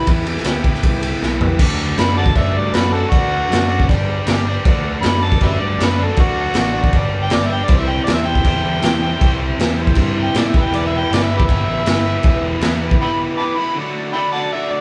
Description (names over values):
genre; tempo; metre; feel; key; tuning
garage rock duo or trio; 158 BPM; 4/4; straight; unclear; A4 = 440 Hz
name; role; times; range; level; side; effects
overdriven harmonica; melody; 0.0-14.8 s; F#4 to D6; -23 LUFS; equal; none
overdriven combo organ; sustained chords; 0.0-14.8 s; D4 to B5; -34 LUFS; equal; none
overdriven electric guitar; riff; 0.0-14.8 s; C3 to D5; -24 LUFS; equal; none
growling picked electric bass; bass; 0.1-12.9 s; E1 to A2; -24 LUFS; equal; overdrive, tube saturation
raw garage drum kit; drums; 0.1-13.0 s; crash cymbal, kick drum, ride cymbal, snare drum, toms; -19 LUFS; equal; vintage 12-bit sampler grit
room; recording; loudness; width
moderate large studio reverb, RT60 1.1 s; band playing live in one room, cassette tape; -17 LUFS; mono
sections
0.0-1.6 A section; 1.6-13.8 B section; 13.8-14.8 B section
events
transistor combo organ fill 0.8-1.6; drum fill 1.2-1.6; break 13.0-13.8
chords
0.0 Em; 1.6 D; 3.9 G5; 4.7 D; 6.9 G5; 7.7 C; 10.5 Em; 13.8 D